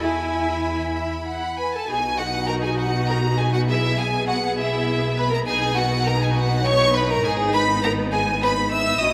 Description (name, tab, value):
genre	quick classical-period movement for string orchestra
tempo	67 BPM (dotted quarters)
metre	6/8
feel	straight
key	B major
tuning	A4 = 440 Hz
part	clear chamber violin section	melody	0.0-9.1 s	E5 to E6	-26 LUFS	equal	none
part	rich chamber violin section	second line	0.0-9.1 s	E4 to G#5	-28 LUFS	equal	none
part	clear chamber viola section	accompaniment	0.0-9.1 s	B3 to G#4	-29 LUFS	equal	none
part	clear studio cello section	bass	0.0-9.1 s	G#2 to E4	-32 LUFS	equal	none
part	rich chamber double bass section	bass	0.0-9.1 s	G#1 to E2	-29 LUFS	equal	none
room	moderate concert hall reverb, RT60 2.0 s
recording	none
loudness	-21 LUFS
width	mono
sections	0.0-1.9 A section; 1.9-9.1 B section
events	none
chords	0.0 E; 1.9 B; 3.7 E/B; 5.5 B; 7.2 G#m